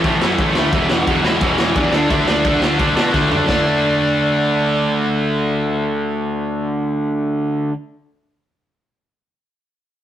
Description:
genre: punk rock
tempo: 174 BPM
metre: 4/4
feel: straight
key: D major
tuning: A4 = 440 Hz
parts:
  - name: distorted electric guitar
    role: riff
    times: 0.0-7.7 s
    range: E2 to D4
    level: -18 LUFS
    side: equal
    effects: overdrive
  - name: fuzz picked electric bass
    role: bass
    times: 0.0-7.7 s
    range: E1 to B2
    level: -21 LUFS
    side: equal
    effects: overdrive
  - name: raw garage drum kit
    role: drums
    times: 0.0-3.6 s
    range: crash cymbal, kick drum, snare drum, toms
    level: -20 LUFS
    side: equal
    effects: none
  - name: raw garage guitar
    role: melody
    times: 0.6-7.7 s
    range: C#4 to F#5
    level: -22 LUFS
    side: equal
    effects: overdrive
room: light reverb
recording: rough rehearsal-room recording, warm saturation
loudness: -15 LUFS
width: side -11 dB against mid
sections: 0.0-3.5 A section; 3.5-6.2 B section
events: drum fill 3.1-3.5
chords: 0.0 A5; 0.7 E5; 1.9 D5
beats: 0.04 0.39 | 0.73 1.07 1.42 1.76 | 2.11 2.45 2.79 3.14 | 3.48 3.83 4.17 4.51 | 4.86 5.20 5.54 5.89

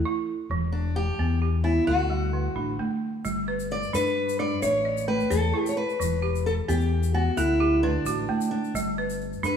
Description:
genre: west african traditional, West African string and xylophone music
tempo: 87 BPM (dotted quarters)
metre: 12/8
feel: straight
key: G lydian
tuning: A4 = 442 Hz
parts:
  - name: balafon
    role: arpeggios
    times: 0.0-9.6 s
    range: D3 to E5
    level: -29 LUFS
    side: right 3 dB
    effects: none
  - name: fingered electric bass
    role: bass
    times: 0.5-9.6 s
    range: E1 to G2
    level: -27 LUFS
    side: left 2 dB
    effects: none
  - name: fingerpicked steel-string acoustic guitar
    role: melody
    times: 0.7-9.6 s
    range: D4 to D5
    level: -26 LUFS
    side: left 1 dB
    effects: none
  - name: tube shaker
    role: percussion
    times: 3.3-9.5 s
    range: none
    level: -41 LUFS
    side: left 8 dB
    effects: none
room: moderate recital hall reverb, RT60 1.6 s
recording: small room ambience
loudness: -23 LUFS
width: side -7 dB against mid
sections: 0.0-3.2 A section; 3.2-9.6 B section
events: steel-string acoustic guitar solo 3.2-9.6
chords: 0.0 A5; 0.5 Em; 1.9 D; 3.2 G; 4.6 A; 6.0 Em; 7.4 D; 8.7 G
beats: | 0.50 1.19 1.88 2.56 | 3.25 3.94 4.62 5.31 | 6.00 6.68 7.37 8.06 | 8.74 9.43

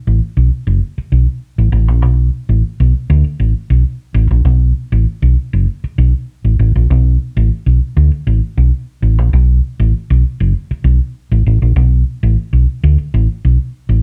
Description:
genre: funk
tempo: 99 BPM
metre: 4/4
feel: straight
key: unclear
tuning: A4 = 439 Hz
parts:
  - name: hollow-body short-scale fingered electric bass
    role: solo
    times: 0.1-14.0 s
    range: F#1 to D2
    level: -13 LUFS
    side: equal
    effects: none
room: moderate studio reverb, RT60 0.6 s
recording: none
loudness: -14 LUFS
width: mono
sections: 0.0-4.5 A section; 4.5-14.0 B section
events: none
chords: none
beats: 0.21 0.81 1.42 | 2.03 2.63 3.24 3.85 | 4.46 5.07 5.67 6.28 | 6.89 7.50 8.11 8.72 | 9.32 9.93 10.54 11.15 | 11.76 12.37 12.97 13.58

